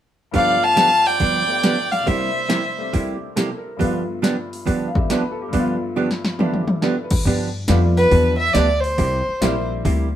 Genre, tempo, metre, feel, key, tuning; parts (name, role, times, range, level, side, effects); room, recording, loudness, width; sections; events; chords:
country, western swing; 139 BPM; 4/4; swing 67% on 8ths; G mixolydian; A4 = 440 Hz
dark fiddle; melody; 0.3-2.9, 8.0-9.7 s; B4 to A5; -18 LUFS; equal
bright upright piano; accompaniment; 0.3-10.1 s; G2 to F5; -27 LUFS; left 3 dB
hollow-body jazz guitar; accompaniment; 0.3-10.1 s; G2 to G4; -22 LUFS; right 3 dB
punchy analog drum machine; drums; 0.3-10.0 s; crash cymbal, hi-hat, kick drum, snare drum, toms; -22 LUFS; left 1 dB; overdrive
clear fiddle; second line; 0.4-2.9 s; C5 to F5; -26 LUFS; right 3 dB
upright bass; bass; 7.3-10.2 s; Bb1 to G2; -20 LUFS; left 1 dB
moderate studio reverb, RT60 0.7 s; band playing live in one room; -17 LUFS; side -11 dB against mid
0.3-7.3 A section; 7.3-10.2 B section
drum fill 6.0-6.8
0.3 G9; 2.1 C9; 3.8 G9; 9.0 C9